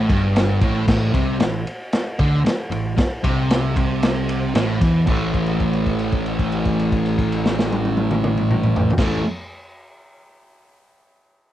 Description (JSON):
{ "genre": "garage rock duo or trio", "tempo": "114 BPM", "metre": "4/4", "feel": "straight", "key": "unclear", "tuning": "A4 = 440 Hz", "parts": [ { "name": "fuzz guitar", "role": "riff", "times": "0.0-9.2 s", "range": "G2 to A3", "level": "-20 LUFS", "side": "equal", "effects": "distortion" }, { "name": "growling picked electric bass", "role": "bass", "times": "0.0-9.2 s", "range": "G1 to E2", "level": "-26 LUFS", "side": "equal", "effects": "overdrive" }, { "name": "crunchy breakbeat drum kit", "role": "drums", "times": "0.1-9.1 s", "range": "crash cymbal, kick drum, ride cymbal, snare drum, toms", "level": "-21 LUFS", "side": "equal", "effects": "cassette tape" } ], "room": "light reverb", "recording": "home recording on cassette", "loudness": "-17 LUFS", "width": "side -12 dB against mid", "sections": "0.0-5.1 A section; 5.1-9.3 B section", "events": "held note 5.1-9.0", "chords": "0.0 A5" }